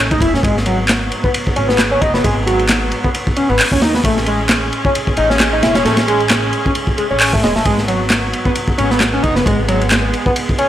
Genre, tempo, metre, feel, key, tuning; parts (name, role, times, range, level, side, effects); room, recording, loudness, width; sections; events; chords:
breakbeat, breaks; 133 BPM; 4/4; swing 56% on 16ths; G# phrygian; A4 = 440 Hz
clear studio string section; sustained chords; 0.0-10.7 s; G#2 to C#4; -22 LUFS; right 2 dB; stereo widening, sidechain pumping
upright bass; bass; 0.0-10.1 s; E1 to A2; -20 LUFS; equal; tube saturation
overdriven synth lead; riff; 0.1-10.7 s; F#3 to E4; -17 LUFS; equal; lush chorus, analog delay
crunchy breakbeat drum kit; drums; 0.1-10.7 s; hi-hat, kick drum, ride cymbal, snare drum; -17 LUFS; equal
electronic handclaps; drums; 0.9-10.0 s; -17 LUFS; equal; overdrive
light reverb, small room ambience; dry, gritty hardware recording; -12 LUFS; side -12 dB against mid
0.0-10.7 A section
0.4 G#m7; 4.0 Amaj7; 7.7 G#m7